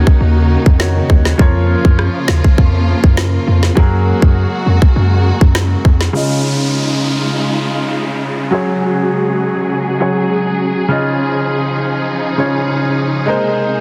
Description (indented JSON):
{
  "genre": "dancehall",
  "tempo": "101 BPM",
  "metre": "4/4",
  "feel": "straight",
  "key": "Db major",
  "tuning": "A4 = 440 Hz",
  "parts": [
    { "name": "clear baby grand piano", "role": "accompaniment", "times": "0.0-13.8 s", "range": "Db3 to Eb5", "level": "-20 LUFS", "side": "equal", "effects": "low-pass filter" },
    { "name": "warm studio string section", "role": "sustained chords", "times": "0.0-13.8 s", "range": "C3 to Ab4", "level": "-21 LUFS", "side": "equal", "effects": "sidechain pumping, low-pass filter" },
    { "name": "hard-hitting 808-style bass", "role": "bass", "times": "0.0-6.1 s", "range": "Eb2 to Gb2", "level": "-15 LUFS", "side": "equal", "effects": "none" },
    { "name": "island pop drum kit", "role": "drums", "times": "0.1-6.1 s", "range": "kick drum, rim click, snare drum", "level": "-13 LUFS", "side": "equal", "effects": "soft clipping on snare" },
    { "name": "downlifter", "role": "sound effects", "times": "6.1-10.9 s", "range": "none", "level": "-26 LUFS", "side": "equal", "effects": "none" }
  ],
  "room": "light reverb, digital ambience",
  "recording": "dense, heavily limited modern master",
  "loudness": "-14 LUFS",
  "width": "mono",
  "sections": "0.0-6.1 A section; 6.1-13.8 B section",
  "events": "filter sweep 6.1-13.8",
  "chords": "0.0 Ebm7; 3.8 Gbadd9; 6.1 Dbadd9; 8.5 Gbsus2; 10.9 Dbadd9; 13.3 Abadd9"
}